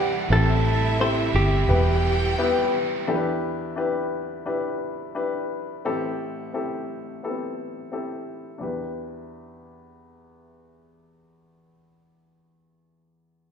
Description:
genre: piano-driven pop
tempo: 87 BPM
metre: 4/4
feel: straight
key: E minor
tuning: A4 = 440 Hz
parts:
  - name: direct-recorded clean electric guitar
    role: melody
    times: 0.0-2.3 s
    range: G4 to C5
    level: -26 LUFS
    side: right 1 dB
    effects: phaser
  - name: warm studio violin section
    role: second line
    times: 0.0-3.0 s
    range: E4 to G5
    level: -29 LUFS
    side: right 1 dB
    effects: none
  - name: warm upright piano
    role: accompaniment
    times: 0.0-13.5 s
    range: A1 to B4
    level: -26 LUFS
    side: left 3 dB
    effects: none
  - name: crunchy overdriven guitar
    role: riff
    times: 0.0-3.1 s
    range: E2 to E4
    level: -30 LUFS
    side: right 4 dB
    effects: none
  - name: fingered electric bass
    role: bass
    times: 0.0-2.3 s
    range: E1 to D2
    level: -22 LUFS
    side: right 1 dB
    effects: none
room: wet large studio reverb, RT60 1.3 s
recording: band playing live in one room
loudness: -22 LUFS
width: side -7 dB against mid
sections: 0.0-3.1 A section; 3.1-8.6 B section; 8.6-11.4 C section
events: none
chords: 0.3 Am7; 1.7 Em; 3.1 Em7; 5.8 Am7; 8.6 Em7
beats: | 0.31 1.00 1.69 2.38 | 3.07 3.76 4.46 5.15 | 5.84 6.53 7.22 7.92 | 8.61 9.30 9.99 10.68

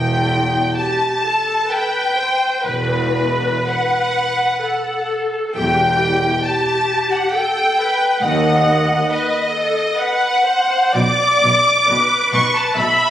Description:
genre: classical, slow romantic movement for string orchestra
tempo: 56-69 BPM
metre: 3/4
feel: rubato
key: E minor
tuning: A4 = 439 Hz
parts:
  - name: clear chamber violin section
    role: melody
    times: 0.0-13.1 s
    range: B4 to D6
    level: -19 LUFS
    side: left 1 dB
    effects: none
  - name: rich symphonic violin section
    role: second line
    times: 0.0-13.1 s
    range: B4 to D6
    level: -20 LUFS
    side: equal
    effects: none
  - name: rich chamber cello section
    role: bass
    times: 0.0-12.8 s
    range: D#2 to B2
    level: -23 LUFS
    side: equal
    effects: none
  - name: rich chamber double bass section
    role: bass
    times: 0.0-12.8 s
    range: E1 to D#2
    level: -24 LUFS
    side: right 2 dB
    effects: none
  - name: rich chamber viola section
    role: accompaniment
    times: 0.8-13.1 s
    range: G4 to E5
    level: -21 LUFS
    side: left 1 dB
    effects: none
room: wet scoring stage reverb, RT60 1.9 s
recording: recorded on a phone in the room, studio ambience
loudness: -14 LUFS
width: side -11 dB against mid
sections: 0.0-13.1 A section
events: none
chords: 0.0 Em; 8.2 D#dim7; 10.9 Bm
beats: 0.77 1.72 | 2.66 3.68 4.64 | 5.56 6.46 7.34 | 8.22 9.10 9.97 | 10.94 11.88 12.77

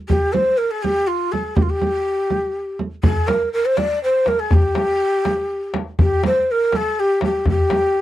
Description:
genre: Persian modal ensemble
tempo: 82 BPM (dotted quarters)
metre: 6/8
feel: straight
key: G dastgah shur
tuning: A4 = 440 Hz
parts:
  - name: breathy ney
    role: melody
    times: 0.1-8.0 s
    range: F4 to D5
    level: -18 LUFS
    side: equal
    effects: none
  - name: frame drum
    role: percussion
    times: 0.1-7.8 s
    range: none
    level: -21 LUFS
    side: right 2 dB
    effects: none
  - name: tombak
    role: percussion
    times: 3.0-8.0 s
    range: none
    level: -21 LUFS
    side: left 2 dB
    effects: none
room: light reverb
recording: dry, close 1970s-style studio recording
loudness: -16 LUFS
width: side -14 dB against mid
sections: 0.0-8.0 A section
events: none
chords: none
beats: | 0.09 0.83 | 1.57 2.30 | 3.04 3.78 | 4.51 5.25 | 5.98 6.72 | 7.46

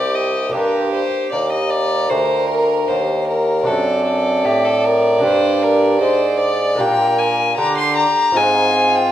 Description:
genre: classical, baroque-style sonata movement with continuo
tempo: 77 BPM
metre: 4/4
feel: straight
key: unclear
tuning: A4 = 440 Hz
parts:
  - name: warm violin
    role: melody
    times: 0.0-9.1 s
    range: G4 to C6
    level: -18 LUFS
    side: left 3 dB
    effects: none
  - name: rich violin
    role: second line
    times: 0.0-9.1 s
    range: F4 to D5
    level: -21 LUFS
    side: right 4 dB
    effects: none
  - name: lute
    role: accompaniment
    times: 0.0-9.1 s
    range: D2 to C5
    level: -24 LUFS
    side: right 2 dB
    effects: none
  - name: clear bassoon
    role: bass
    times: 0.0-9.1 s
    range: C2 to D3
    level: -20 LUFS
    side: right 1 dB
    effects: none
room: moderate recital hall reverb, RT60 1.8 s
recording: none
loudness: -14 LUFS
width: side -11 dB against mid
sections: 0.0-9.1 A section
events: none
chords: 0.0 Cm; 0.5 Gm; 3.7 D7/F#; 5.2 Gm; 6.8 Gm/Bb; 8.4 Fm/Ab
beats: | 0.54 1.32 2.10 2.89 | 3.67 4.45 5.23 6.01 | 6.79 7.57 8.36

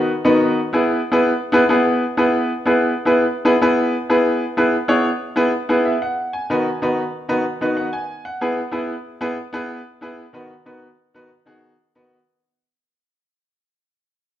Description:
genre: soul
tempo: 125 BPM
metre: 4/4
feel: swing 66% on 8ths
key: E major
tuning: A4 = 442 Hz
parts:
  - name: clear baby grand piano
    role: solo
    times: 0.0-12.2 s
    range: D#3 to G#5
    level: -17 LUFS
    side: equal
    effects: none
room: wet large studio reverb, RT60 1.1 s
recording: band playing live in one room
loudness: -16 LUFS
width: side -12 dB against mid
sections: 0.0-4.6 A section; 4.6-12.3 B section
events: fade-out 4.6-12.3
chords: 0.0 B/D#; 0.7 E; 6.5 B/D#; 8.4 E; 10.3 B/D#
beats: 0.26 | 0.73 1.21 1.69 2.17 | 2.65 3.13 3.61 4.09 | 4.57 5.05 5.53 6.01 | 6.50 6.98 7.46 7.94 | 8.42 8.90 9.38 9.87 | 10.35 10.83 11.31 11.80

